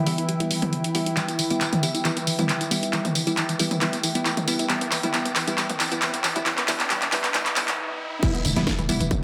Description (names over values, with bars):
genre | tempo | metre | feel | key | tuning
driving peak-time techno | 136 BPM | 4/4 | straight | E minor | A4 = 440 Hz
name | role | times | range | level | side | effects
analog drone | drone | 0.0-9.2 s | E3 to E4 | -35 LUFS | equal | chorus, sidechain pumping
warbly tape-like pad | texture | 0.0-9.2 s | E4 to G5 | -38 LUFS | equal | chorus, built-in reverb, sidechain pumping
tight sequenced synth | riff | 0.1-9.2 s | D3 to E4 | -34 LUFS | equal | chorus, sidechain pumping, digital delay
wavetable chord stab | stabs | 0.1-9.1 s | G3 to E4 | -31 LUFS | equal | sidechain pumping, tape echo
techno drum kit | drums | 0.1-9.2 s | crash cymbal, handclaps, hi-hat, snare drum, tambourine, toms | -26 LUFS | equal | none
riser and impact | sound effects | 4.0-9.2 s | none | -38 LUFS | equal | none
electronic kick drum | drums | 8.2-9.2 s | none | -28 LUFS | equal | distortion
growling 808-style bass | bass | 8.4-9.1 s | E1 | -30 LUFS | equal | tube saturation, sidechain pumping, low-pass filter
room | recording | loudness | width
wet plate reverb, RT60 1.4 s | dense, heavily limited modern master, high-pass filter | -24 LUFS | mono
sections
0.0-8.2 A section; 8.2-9.2 B section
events
build-up 0.0-8.2; filter sweep on synth arpeggio sound 0.0-8.2; filter sweep on synth stab 0.0-8.2; drum fill 1.2-7.8; stop 7.8-8.2; drop 8.2-9.2; impact 8.2-9.2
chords
0.0 Em